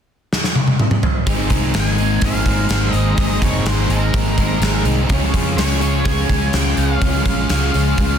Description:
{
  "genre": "rock, shoegaze and dream pop",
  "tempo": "125 BPM",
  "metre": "4/4",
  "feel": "straight",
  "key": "Ab major",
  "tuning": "A4 = 440 Hz",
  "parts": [
    { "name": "gated 80s drum kit", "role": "drums", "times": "0.3-8.1 s", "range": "hi-hat, kick drum, snare drum, toms", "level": "-19 LUFS", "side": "equal", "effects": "none" },
    { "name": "brassy analog pad", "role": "sustained chords", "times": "1.3-8.2 s", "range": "Ab4 to Db6", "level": "-31 LUFS", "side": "right 2 dB", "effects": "chorus" },
    { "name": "twelve-string electric guitar", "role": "arpeggios", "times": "1.3-8.2 s", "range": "Eb3 to Db4", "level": "-29 LUFS", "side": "right 2 dB", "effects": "none" },
    { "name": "biting overdriven guitar", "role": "riff", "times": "1.3-8.2 s", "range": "Ab2 to F4", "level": "-26 LUFS", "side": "equal", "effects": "none" },
    { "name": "overdriven electric guitar", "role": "riff", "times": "1.3-8.2 s", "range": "Db3 to Ab4", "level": "-25 LUFS", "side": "right 14 dB", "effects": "reverse reverb" },
    { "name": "thick fuzz guitar", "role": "riff", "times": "1.3-8.2 s", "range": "Ab2 to Db4", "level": "-23 LUFS", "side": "left 11 dB", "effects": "distortion, analog chorus" },
    { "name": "vintage muted fingered electric bass", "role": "bass", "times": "1.3-8.2 s", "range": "F1 to F2", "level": "-20 LUFS", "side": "equal", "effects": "none" },
    { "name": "tambourine", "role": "percussion", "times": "1.3-8.0 s", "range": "none", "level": "-37 LUFS", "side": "left 15 dB", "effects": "none" },
    { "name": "octave-fuzz lead guitar", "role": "melody", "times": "1.8-8.2 s", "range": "Bb4 to Ab5", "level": "-25 LUFS", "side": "right 1 dB", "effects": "distortion, digital delay" }
  ],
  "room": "little or no reverb",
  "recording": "dense, heavily limited modern master",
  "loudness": "-14 LUFS",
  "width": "side -8 dB against mid",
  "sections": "0.0-1.3 A section; 1.3-8.2 B section",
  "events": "drum fill 0.3-1.3",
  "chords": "0.0 N.C.; 1.3 Abadd9; 5.1 Db",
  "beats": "0.32 0.80 | 1.27 1.75 2.23 2.71 | 3.18 3.66 4.14 4.62 | 5.10 5.58 6.06 6.54 | 7.02 7.50 7.98"
}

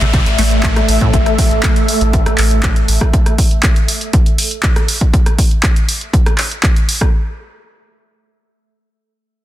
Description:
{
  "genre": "acid house",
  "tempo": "120 BPM",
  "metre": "4/4",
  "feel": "straight",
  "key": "unclear",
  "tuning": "A4 = 440 Hz",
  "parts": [
    { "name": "liquid acid bass", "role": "riff", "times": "0.0-1.1 s", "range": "A2 to A3", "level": "-21 LUFS", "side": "equal", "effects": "wide subtle chorus, sidechain pumping, digital delay" },
    { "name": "round analog bass", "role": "bass", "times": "0.0-3.0 s", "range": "A1", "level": "-16 LUFS", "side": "equal", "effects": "tube saturation, sidechain pumping" },
    { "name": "punchy analog drum machine", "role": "drums", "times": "0.0-7.1 s", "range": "handclaps, hi-hat, rim click", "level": "-19 LUFS", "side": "right 1 dB", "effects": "none" },
    { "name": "downlifter", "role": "sound effects", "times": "0.0-3.1 s", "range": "none", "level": "-24 LUFS", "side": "equal", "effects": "none" },
    { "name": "ethereal airy pad", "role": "texture", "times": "0.0-3.1 s", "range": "A3 to E6", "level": "-19 LUFS", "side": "right 1 dB", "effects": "ensemble chorus, built-in reverb, phaser, sidechain pumping" },
    { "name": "electronic kick drum", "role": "drums", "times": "0.1-7.1 s", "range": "none", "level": "-13 LUFS", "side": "equal", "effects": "none" }
  ],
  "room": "light reverb, digital ambience",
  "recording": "dense, heavily limited modern master",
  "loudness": "-11 LUFS",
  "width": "side -14 dB against mid",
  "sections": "0.0-7.1 A section",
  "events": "filter sweep on acid bass 0.0-1.1",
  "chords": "0.0 A5",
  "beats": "0.13 0.63 | 1.13 1.63 2.13 2.63 | 3.13 3.63 4.13 4.63 | 5.13 5.63 6.13 6.63"
}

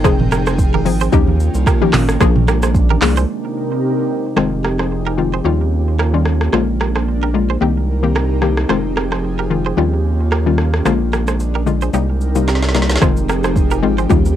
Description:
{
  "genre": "afrobeats",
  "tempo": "111 BPM",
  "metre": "4/4",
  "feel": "swing 55% on 16ths",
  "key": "F minor",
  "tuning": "A4 = 440 Hz",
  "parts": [
    { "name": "hollow square pluck", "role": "accompaniment", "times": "0.0-14.4 s", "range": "C3 to Ab4", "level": "-18 LUFS", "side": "left 7 dB", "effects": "chorus, cassette tape" },
    { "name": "airy breathy pad", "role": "sustained chords", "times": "0.0-14.4 s", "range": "C3 to G5", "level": "-21 LUFS", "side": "right 1 dB", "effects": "chorus, cassette tape" },
    { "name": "round analog bass", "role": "bass", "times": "0.0-14.4 s", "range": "F1 to Eb2", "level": "-18 LUFS", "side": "right 1 dB", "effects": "none" },
    { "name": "afro-pop drum kit", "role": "drums", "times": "0.0-14.4 s", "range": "handclaps, hi-hat, kick drum, rim click, shaker, snare drum, toms", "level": "-17 LUFS", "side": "right 1 dB", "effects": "none" },
    { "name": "congas", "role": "percussion", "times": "0.0-3.2 s", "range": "none", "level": "-23 LUFS", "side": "right 11 dB", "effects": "none" },
    { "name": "direct-recorded clean electric guitar", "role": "riff", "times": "0.1-14.3 s", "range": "Eb4 to C5", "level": "-24 LUFS", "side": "right 10 dB", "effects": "cassette tape, analog delay" }
  ],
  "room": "light reverb",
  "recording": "home recording on cassette",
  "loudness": "-13 LUFS",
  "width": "side -11 dB against mid",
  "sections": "0.0-4.4 A section; 4.4-13.0 B section; 13.0-14.4 C section",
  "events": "break 3.3-4.4; drum fill 12.5-13.0",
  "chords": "0.0 Fm7; 1.1 Eb9; 2.2 Bb7; 3.3 Cm7; 4.4 Fm7; 5.5 Eb9; 6.5 Bb7; 7.6 Cm7; 8.7 Fm7; 9.8 Eb9; 10.9 Bb7; 11.9 Cm7; 13.0 Fm7",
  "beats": "| 0.04 0.58 1.13 1.67 | 2.21 2.75 3.29 3.83 | 4.37 4.91 5.45 5.99 | 6.53 7.07 7.61 8.15 | 8.69 9.23 9.78 10.31 | 10.86 11.40 11.94 12.48 | 13.02 13.56 14.10"
}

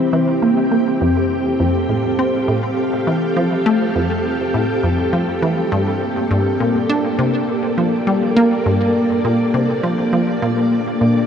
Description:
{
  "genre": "ambient, sequencer-driven space music",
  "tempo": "102 BPM",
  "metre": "4/4",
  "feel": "straight",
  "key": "G dorian",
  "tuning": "A4 = 441 Hz",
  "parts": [
    { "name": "string machine, full ensemble", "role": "sustained chords", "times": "0.0-11.3 s", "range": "Bb3 to G5", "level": "-18 LUFS", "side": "left 1 dB", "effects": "ensemble chorus" },
    { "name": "resonant blip pluck", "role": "riff", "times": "0.1-11.2 s", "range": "F2 to D4", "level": "-18 LUFS", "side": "right 1 dB", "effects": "chorus, tape echo" }
  ],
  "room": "wet huge ambient reverb, RT60 7.7 s",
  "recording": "dark, warm production",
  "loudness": "-15 LUFS",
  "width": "side -8 dB against mid",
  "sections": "0.0-11.3 A section",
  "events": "none",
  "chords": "0.0 C; 1.0 Fadd9; 5.7 Gmadd9; 10.4 Bb",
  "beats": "0.42 | 1.01 1.60 2.19 2.78 | 3.37 3.95 4.54 5.13 | 5.72 6.31 6.89 7.48 | 8.07 8.66 9.25 9.84 | 10.43 11.01"
}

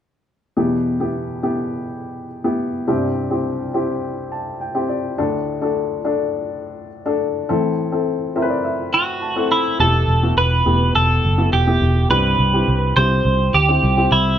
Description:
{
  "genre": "pop",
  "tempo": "104 BPM",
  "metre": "4/4",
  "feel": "straight",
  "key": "E minor",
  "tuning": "A4 = 440 Hz",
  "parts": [
    { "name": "dark upright piano", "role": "accompaniment", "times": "0.6-14.4 s", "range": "C2 to B5", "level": "-20 LUFS", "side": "left 2 dB", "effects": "none" },
    { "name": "twelve-string electric guitar", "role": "melody", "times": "8.9-14.4 s", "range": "E4 to C5", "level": "-18 LUFS", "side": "right 2 dB", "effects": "none" },
    { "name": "vintage muted picked electric bass", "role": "bass", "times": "9.8-14.4 s", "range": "E1 to D2", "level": "-17 LUFS", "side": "equal", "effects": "none" }
  ],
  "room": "wet studio reverb, RT60 0.8 s",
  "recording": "band playing live in one room",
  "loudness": "-16 LUFS",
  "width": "side -10 dB against mid",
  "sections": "0.6-9.8 A section; 9.8-14.4 B section",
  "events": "upright piano fill 4.0-5.2, 8.1-9.8",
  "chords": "0.6 Em; 2.9 C; 5.2 D; 7.5 Am; 9.8 Em; 12.1 C",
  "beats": "| 0.57 1.15 1.73 2.30 | 2.88 3.46 4.03 4.61 | 5.19 5.76 6.34 6.92 | 7.49 8.07 8.64 9.22 | 9.80 10.37 10.95 11.53 | 12.10 12.68 13.26 13.83"
}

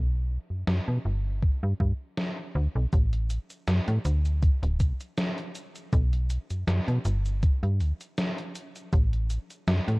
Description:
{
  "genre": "vaporwave",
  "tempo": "80 BPM",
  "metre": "4/4",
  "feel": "swing 54% on 16ths",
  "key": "unclear",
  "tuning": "A4 = 440 Hz",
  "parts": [
    { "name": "slap-like FM bass", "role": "bass", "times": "0.0-10.0 s", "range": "D1 to B2", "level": "-25 LUFS", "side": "equal", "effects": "none" },
    { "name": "gated 80s digital drum machine", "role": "drums", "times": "0.7-10.0 s", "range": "cabasa, hi-hat, snare drum", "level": "-32 LUFS", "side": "equal", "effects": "gated reverb, gated reverb snare" },
    { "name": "electronic kick drum", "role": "drums", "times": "1.4-9.1 s", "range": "none", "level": "-24 LUFS", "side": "equal", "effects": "none" }
  ],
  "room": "little or no reverb",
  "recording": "cassette tape",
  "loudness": "-25 LUFS",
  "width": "side -26 dB against mid",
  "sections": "0.0-2.9 A section; 2.9-10.0 B section",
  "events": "none",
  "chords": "none",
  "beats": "0.68 1.43 2.18 | 2.93 3.68 4.43 5.18 | 5.93 6.68 7.43 8.18 | 8.93 9.68"
}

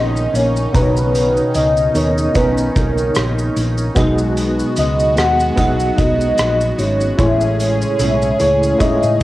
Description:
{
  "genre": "indie pop, bedroom pop",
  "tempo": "74 BPM",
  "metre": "4/4",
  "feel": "swing 55% on 16ths",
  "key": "B major",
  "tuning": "A4 = 441 Hz",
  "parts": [
    { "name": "warm velvety synth lead", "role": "melody", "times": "0.0-9.2 s", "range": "A#4 to F#5", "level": "-18 LUFS", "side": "equal", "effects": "tremolo, lush chorus, cassette tape, plate reverb" },
    { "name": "nylon-string guitar", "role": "accompaniment", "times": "0.0-9.2 s", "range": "A2 to E4", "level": "-21 LUFS", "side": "left 1 dB", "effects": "ensemble chorus, warbly pitch drift, cassette tape, plate reverb" },
    { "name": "reed electric piano", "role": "accompaniment", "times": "0.0-9.2 s", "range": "A3 to A#5", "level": "-22 LUFS", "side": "right 1 dB", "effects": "fast tremolo, cassette tape, plate reverb" },
    { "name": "phased analog pad", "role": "sustained chords", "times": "0.0-9.2 s", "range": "C#3 to G#4", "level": "-26 LUFS", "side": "equal", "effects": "phaser, chorus, cassette tape, plate reverb" },
    { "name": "hollow-body short-scale fingered electric bass", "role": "bass", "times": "0.0-9.2 s", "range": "G#1 to A2", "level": "-20 LUFS", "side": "equal", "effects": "none" },
    { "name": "loose indie drum kit", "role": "drums", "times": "0.2-9.2 s", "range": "hi-hat, kick drum, rim click, shaker", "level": "-21 LUFS", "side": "equal", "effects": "cassette tape" }
  ],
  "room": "light reverb",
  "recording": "home recording on cassette",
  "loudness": "-13 LUFS",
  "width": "side -16 dB against mid",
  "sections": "0.0-9.2 A section",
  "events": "none",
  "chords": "0.0 Bmaj9; 4.0 G#m7/B; 7.2 Amaj7",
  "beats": "| 0.74 1.54 2.35 3.15 | 3.96 4.77 5.57 6.38 | 7.19 7.99 8.80"
}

